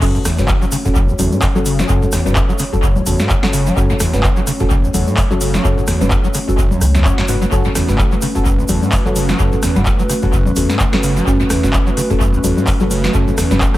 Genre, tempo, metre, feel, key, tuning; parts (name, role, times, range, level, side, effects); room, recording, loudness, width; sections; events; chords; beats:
acid house; 128 BPM; 4/4; swing 56% on 16ths; F# minor; A4 = 438 Hz
dark analog pad; sustained chords; 0.0-13.8 s; A3 to C#5; -22 LUFS; equal; chorus, sidechain pumping
overdriven acid bass; riff; 0.0-13.8 s; F#1 to F#3; -19 LUFS; equal; distortion, analog chorus, cassette tape, tape echo
deep mellow chord stab; stabs; 0.0-13.6 s; C#4 to C#5; -22 LUFS; left 2 dB; chorus, phaser, cassette tape, analog delay
round analog bass; bass; 0.0-13.8 s; E1 to C#2; -21 LUFS; equal; sidechain pumping
electro analog drum machine; drums; 0.0-13.8 s; congas, crash cymbal, handclaps, hi-hat, rim click, snare drum; -20 LUFS; left 1 dB; analog delay
electronic kick drum; drums; 0.0-13.7 s; -17 LUFS; equal
egg shaker; percussion; 0.0-13.8 s; -28 LUFS; right 3 dB
light reverb, digital ambience; echo-heavy mix; -12 LUFS; side -16 dB against mid
0.0-13.8 A section
drop 0.0-13.8
0.0 F#m
| 0.02 0.49 0.95 1.42 | 1.89 2.36 2.83 3.30 | 3.77 4.24 4.71 5.17 | 5.64 6.11 6.58 7.05 | 7.52 7.99 8.46 8.92 | 9.39 9.86 10.33 10.80 | 11.27 11.74 12.21 12.67 | 13.14 13.61